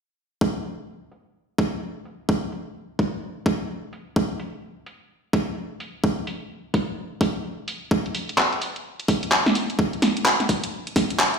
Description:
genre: UK garage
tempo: 128 BPM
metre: 4/4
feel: swing 62% on 16ths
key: none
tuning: none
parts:
  - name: electronic kick drum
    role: drums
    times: 0.4-11.1 s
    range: none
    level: -21 LUFS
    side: right 1 dB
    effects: overdrive, high-pass filter on kick, small room ambience
  - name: garage drum kit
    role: drums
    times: 0.6-11.4 s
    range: handclaps, hi-hat, snare drum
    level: -22 LUFS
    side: equal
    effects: overdrive, low-pass filter on hats, small room ambience, low-pass filter on snare
room: wet studio reverb, RT60 0.5 s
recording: played on a big sound system in a bare room, large studio reverb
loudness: -22 LUFS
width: side -6 dB against mid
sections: 0.4-11.4 A section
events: filter sweep on drum 0.4-11.4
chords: none

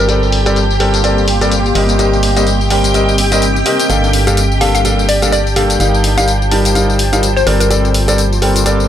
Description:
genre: piano house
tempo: 126 BPM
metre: 4/4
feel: swing 57% on 16ths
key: unclear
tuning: A4 = 445 Hz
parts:
  - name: hollow square pluck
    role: melody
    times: 0.0-0.5, 4.6-7.7 s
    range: Bb4 to F5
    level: -19 LUFS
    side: left 1 dB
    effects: analog chorus, ping-pong delay
  - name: string machine, violins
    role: sustained chords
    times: 0.0-8.9 s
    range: G4 to G5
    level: -20 LUFS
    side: equal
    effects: ensemble chorus
  - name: clear concert grand piano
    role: riff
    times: 0.0-8.9 s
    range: G2 to A5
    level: -15 LUFS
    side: left 1 dB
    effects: ping-pong delay
  - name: organ-like FM bass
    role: bass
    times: 0.0-8.9 s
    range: G1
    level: -15 LUFS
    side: equal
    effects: none
  - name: granular cloud pad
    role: texture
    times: 0.0-8.9 s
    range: Bb3 to D6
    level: -21 LUFS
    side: equal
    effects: built-in reverb
  - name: electronic hi-hat and tambourine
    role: drums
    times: 0.1-8.9 s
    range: none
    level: -19 LUFS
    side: left 3 dB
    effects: low-pass filter on hats, low-pass filter on snare, low-pass filter on cymbals, low-pass filter on perc
room: light reverb, digital ambience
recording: none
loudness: -10 LUFS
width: side -10 dB against mid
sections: 0.0-8.9 A section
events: none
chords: 0.0 Bbmaj9/G; 1.8 Cm7/G; 3.9 Gm9; 5.8 F9sus4/G; 7.5 Bbmaj9/G

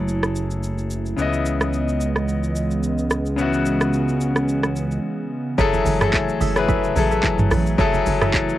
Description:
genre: amapiano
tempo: 109 BPM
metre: 4/4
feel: swing 55% on 16ths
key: F# dorian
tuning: A4 = 440 Hz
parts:
  - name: bright baby grand piano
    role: accompaniment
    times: 0.0-8.6 s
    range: C#3 to D#5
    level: -23 LUFS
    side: left 5 dB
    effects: cassette tape
  - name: hollow soft pad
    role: sustained chords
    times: 0.0-8.6 s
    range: C#3 to D#5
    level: -25 LUFS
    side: right 1 dB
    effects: chorus, sidechain pumping, cassette tape
  - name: fat analog bass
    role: bass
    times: 0.0-5.0 s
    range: F#1 to C#2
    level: -24 LUFS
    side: right 1 dB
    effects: none
  - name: afro-pop drum kit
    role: drums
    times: 0.1-8.6 s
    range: handclaps, hi-hat, kick drum, rim click, shaker, toms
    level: -23 LUFS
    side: right 1 dB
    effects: cassette tape
  - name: percussive organ stab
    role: stabs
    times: 5.6-8.3 s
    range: G#4 to E5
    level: -29 LUFS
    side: right 8 dB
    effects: chorus, cassette tape, analog delay
  - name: deep log drum bass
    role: bass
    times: 5.6-8.5 s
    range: F#1 to A1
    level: -24 LUFS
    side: right 1 dB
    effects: none
  - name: congas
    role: percussion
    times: 5.7-8.2 s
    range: none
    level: -30 LUFS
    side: right 7 dB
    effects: none
room: light reverb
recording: home recording on cassette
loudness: -18 LUFS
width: side -14 dB against mid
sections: 0.0-5.6 A section; 5.6-8.6 B section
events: break 5.0-5.6; drop 5.6-8.6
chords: 0.0 F#m9; 1.2 C#m9; 5.6 F#m9

